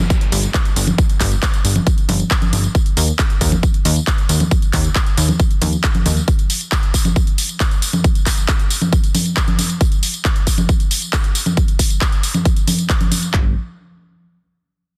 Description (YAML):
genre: uplifting trance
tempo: 136 BPM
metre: 4/4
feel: straight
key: unclear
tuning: A4 = 440 Hz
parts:
  - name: plucky analog bass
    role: bass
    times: 0.0-6.2, 13.3-13.5 s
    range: G1 to Eb2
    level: -20 LUFS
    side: equal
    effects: tube saturation, sidechain pumping
  - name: downlifter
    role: sound effects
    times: 0.0-2.7 s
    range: none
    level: -36 LUFS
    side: equal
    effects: none
  - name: big-room dance drum kit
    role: drums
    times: 0.1-13.4 s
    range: handclaps, kick drum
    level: -18 LUFS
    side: equal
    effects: overdrive
  - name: big-room dance drum kit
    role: drums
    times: 0.1-13.3 s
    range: congas, handclaps, hi-hat, tambourine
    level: -22 LUFS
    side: equal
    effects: overdrive, sidechain pumping on hats, sidechain pumping on cymbals, sidechain pumping on perc
room: little or no reverb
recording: dense, heavily limited modern master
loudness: -17 LUFS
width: mono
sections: 0.0-13.3 A section; 13.3-15.0 B section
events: none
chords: none